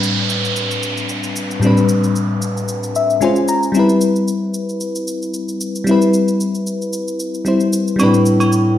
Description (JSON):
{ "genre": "amapiano", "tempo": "113 BPM", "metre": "4/4", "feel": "swing 55% on 16ths", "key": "A minor", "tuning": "A4 = 438 Hz", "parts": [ { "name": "bell-like FM electric piano", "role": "accompaniment", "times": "0.0-8.8 s", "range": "A2 to Bb5", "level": "-15 LUFS", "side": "left 2 dB", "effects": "chorus" }, { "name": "shaker", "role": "drums", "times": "0.0-8.7 s", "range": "none", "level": "-29 LUFS", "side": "right 1 dB", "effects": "none" }, { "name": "downlifter", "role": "sound effects", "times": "0.0-3.7 s", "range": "none", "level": "-23 LUFS", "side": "right 4 dB", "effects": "none" }, { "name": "breathy bass clarinet", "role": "bass", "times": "8.0-8.8 s", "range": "A2", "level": "-14 LUFS", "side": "equal", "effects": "none" }, { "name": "agogo bells", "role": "percussion", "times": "8.0-8.5 s", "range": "none", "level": "-22 LUFS", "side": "right 4 dB", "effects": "none" } ], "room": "light reverb, digital ambience", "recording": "played on a big sound system in a bare room, large studio reverb", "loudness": "-14 LUFS", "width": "side -11 dB against mid", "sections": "0.0-8.8 A section", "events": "FM electric piano fill 2.7-3.7", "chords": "0.0 Am11; 3.2 C#maj7; 3.7 Cmaj7; 8.0 Am11" }